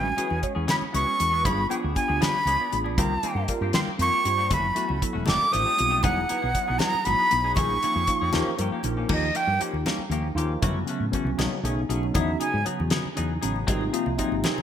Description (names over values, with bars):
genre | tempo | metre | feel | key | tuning
electric jazz fusion | 78 BPM (dotted quarters) | 6/8 | straight | unclear | A4 = 436 Hz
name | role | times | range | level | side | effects
breathy bright concert flute | melody | 0.0-9.6, 12.2-12.6 s | Eb5 to Eb6 | -24 LUFS | right 1 dB | none
tine electric piano | accompaniment | 0.0-14.6 s | C3 to C#5 | -30 LUFS | equal | medium stereo tremolo, phaser
clean electric guitar | stabs | 0.0-14.6 s | Eb3 to G#4 | -33 LUFS | left 4 dB | wide subtle chorus, ping-pong delay
woody fretless electric bass | bass | 0.0-14.6 s | Fb1 to A2 | -28 LUFS | equal | none
congas | percussion | 0.1-14.6 s | none | -34 LUFS | left 1 dB | none
damped 70s drum kit | drums | 0.2-14.6 s | crash cymbal, hi-hat, kick drum, snare drum | -28 LUFS | equal | gated reverb
room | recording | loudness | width
moderate plate reverb, RT60 1.9 s, small room ambience | bright 1980s-style digital production | -22 LUFS | side -9 dB against mid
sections
0.0-9.1 A section; 9.1-14.6 B section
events
flute solo 9.1-14.6; tine electric piano fill 14.4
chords
0.0 Amaj9; 1.4 G7b9; 3.0 Cm7; 4.5 Gbm7; 5.3 F13; 6.0 Emaj9; 7.6 Bbm9; 8.3 Eb9; 10.6 Gbm7; 11.4 B13; 12.2 Emaj9; 13.7 Ab7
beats
0.69 | 1.45 2.21 | 2.98 3.74 | 4.51 5.27 | 6.04 6.80 | 7.57 8.33 | 9.10 9.86 | 10.62 11.39 | 12.15 12.92 | 13.68 14.45